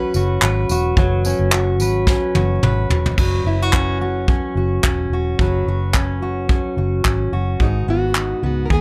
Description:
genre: acoustic pop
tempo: 108 BPM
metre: 4/4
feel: swing 55% on 16ths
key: unclear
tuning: A4 = 437 Hz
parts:
  - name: fingerpicked plugged-in steel-string acoustic guitar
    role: melody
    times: 0.0-2.6, 7.6-8.8 s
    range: D#4 to B4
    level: -29 LUFS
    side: equal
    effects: plate reverb
  - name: fingerpicked steel-string acoustic guitar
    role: accompaniment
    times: 0.0-8.8 s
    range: G#2 to B4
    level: -24 LUFS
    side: equal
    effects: plate reverb
  - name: vintage muted fingered electric bass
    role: bass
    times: 0.1-8.8 s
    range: E1 to D#2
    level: -22 LUFS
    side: equal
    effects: none
  - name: soft brush drum kit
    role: drums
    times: 0.1-8.8 s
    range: crash cymbal, handclaps, kick drum, snare drum, tambourine, toms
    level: -21 LUFS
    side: equal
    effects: none
room: little or no reverb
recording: none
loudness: -18 LUFS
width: mono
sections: 0.0-3.2 A section; 3.2-7.6 B section; 7.6-8.8 C section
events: drum fill 2.1-3.2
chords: 0.0 F#sus4; 7.6 G#m7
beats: 0.42 | 0.97 1.52 2.07 2.62 | 3.18 3.73 4.28 4.84 | 5.39 5.94 6.50 7.05 | 7.60 8.16 8.71

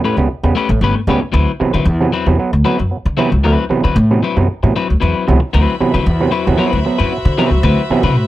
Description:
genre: funk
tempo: 114 BPM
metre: 4/4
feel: straight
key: unclear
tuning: A4 = 439 Hz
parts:
  - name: electric guitar at the edge of break-up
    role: accompaniment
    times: 0.0-8.2 s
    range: F#3 to B4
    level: -19 LUFS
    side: left 6 dB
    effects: none
  - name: auto-wah clav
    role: stabs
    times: 0.0-8.1 s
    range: A2 to B3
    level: -16 LUFS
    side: right 3 dB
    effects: overdrive
  - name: upright bass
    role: bass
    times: 0.2-8.3 s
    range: G1 to D3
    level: -14 LUFS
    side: equal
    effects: none
  - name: warm chamber string section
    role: sustained chords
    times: 5.5-8.3 s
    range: F#4 to B5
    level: -23 LUFS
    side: left 2 dB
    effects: none
room: light reverb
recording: none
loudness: -12 LUFS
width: side -15 dB against mid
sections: 0.0-5.5 A section; 5.5-8.3 B section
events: none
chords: 0.0 A9; 1.3 D13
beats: 0.28 0.81 | 1.33 1.86 2.38 2.91 | 3.43 3.96 4.48 5.01 | 5.53 6.06 6.58 7.11 | 7.63 8.16

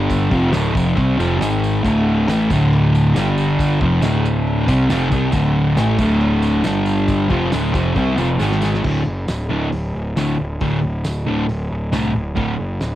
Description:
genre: garage rock duo or trio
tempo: 137 BPM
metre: 4/4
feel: straight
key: unclear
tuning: A4 = 439 Hz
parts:
  - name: fuzz guitar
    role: riff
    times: 0.0-12.5 s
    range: D2 to C4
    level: -16 LUFS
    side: equal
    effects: distortion
  - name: fuzz picked electric bass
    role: bass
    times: 0.0-13.0 s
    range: D1 to D2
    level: -22 LUFS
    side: equal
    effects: overdrive
  - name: cloth-damped thuddy drum kit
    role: drums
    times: 0.1-12.9 s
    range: crash cymbal, hi-hat, kick drum, snare drum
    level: -26 LUFS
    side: equal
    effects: none
  - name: tambourine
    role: percussion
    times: 0.1-12.9 s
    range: none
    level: -39 LUFS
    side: right 6 dB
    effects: none
room: moderate small room reverb, RT60 0.5 s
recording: home recording on cassette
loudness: -15 LUFS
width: side -13 dB against mid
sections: 0.0-8.8 A section; 8.8-13.0 B section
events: drum fill 8.4-8.8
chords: 0.3 D5; 1.4 G#5; 1.8 D5; 3.2 G5; 3.8 D5; 6.7 G5; 7.3 D5; 8.4 G#5; 8.8 D5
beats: | 0.10 0.53 0.97 1.41 | 1.84 2.28 2.72 3.15 | 3.59 4.03 4.46 4.90 | 5.34 5.78 6.21 6.65 | 7.09 7.53 7.97 8.41 | 8.85 9.29 9.73 10.17 | 10.61 11.05 11.49 11.94 | 12.38 12.82

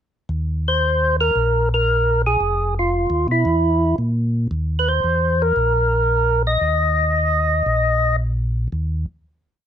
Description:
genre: soul jazz organ trio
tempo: 114 BPM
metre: 4/4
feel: swing 69% on 8ths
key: unclear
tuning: A4 = 440 Hz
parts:
  - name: mellow tonewheel organ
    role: bass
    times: 0.3-9.1 s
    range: F1 to Cb3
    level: -20 LUFS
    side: equal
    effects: slow rotary speaker
  - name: percussive tonewheel organ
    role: melody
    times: 0.7-8.2 s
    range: Fb4 to Eb5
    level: -18 LUFS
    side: equal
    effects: overdrive, slow rotary speaker
room: light reverb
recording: none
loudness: -17 LUFS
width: side -9 dB against mid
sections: 0.3-8.7 A section; 8.7-9.7 final note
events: none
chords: 0.3 Eb5; 2.4 Fm7b5; 3.5 N.C.; 4.5 Eb5; 8.7 N.C.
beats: | 0.31 0.83 1.36 1.88 | 2.41 2.94 3.46 3.99 | 4.52 5.04 5.57 6.10 | 6.62 7.15 7.67 8.20 | 8.72

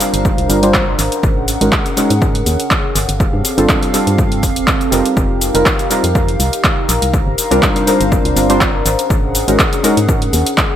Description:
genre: deep house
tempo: 122 BPM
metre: 4/4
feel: swing 54% on 16ths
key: unclear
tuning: A4 = 442 Hz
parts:
  - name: hollow soft pad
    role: sustained chords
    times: 0.0-10.8 s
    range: C4 to Gb5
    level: -21 LUFS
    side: left 1 dB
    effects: chorus, vintage 12-bit sampler grit, sidechain pumping
  - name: warm analog keys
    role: stabs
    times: 0.0-10.0 s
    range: G3 to C5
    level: -16 LUFS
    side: equal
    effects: chorus, sidechain pumping, low-pass filter, dub echo
  - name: deep house drum kit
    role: drums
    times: 0.0-10.7 s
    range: cabasa, handclaps, hi-hat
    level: -18 LUFS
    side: equal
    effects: overdrive, studio reverb, dub echo
  - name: deep dark ambient pad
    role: texture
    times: 0.0-10.8 s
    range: C4 to Bb5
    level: -22 LUFS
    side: equal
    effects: chorus, built-in reverb, sidechain pumping
  - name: organ-like FM bass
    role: bass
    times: 0.1-10.4 s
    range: D1 to Ab2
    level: -18 LUFS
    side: equal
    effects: sidechain pumping
  - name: electronic kick drum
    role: drums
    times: 0.3-10.7 s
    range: none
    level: -16 LUFS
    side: equal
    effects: overdrive, studio reverb
room: light reverb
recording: echo-heavy mix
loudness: -11 LUFS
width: side -10 dB against mid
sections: 0.0-10.8 A section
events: filter sweep on synth keys 0.0-10.8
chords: 0.0 C9sus4; 1.0 Ab9sus4; 3.0 G9sus4; 5.2 F9sus4; 7.1 C9sus4; 8.9 Ab9sus4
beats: 0.25 0.74 | 1.23 1.73 2.22 2.71 | 3.20 3.69 4.18 4.68 | 5.17 5.66 6.15 6.64 | 7.14 7.63 8.12 8.61 | 9.10 9.60 10.09 10.58

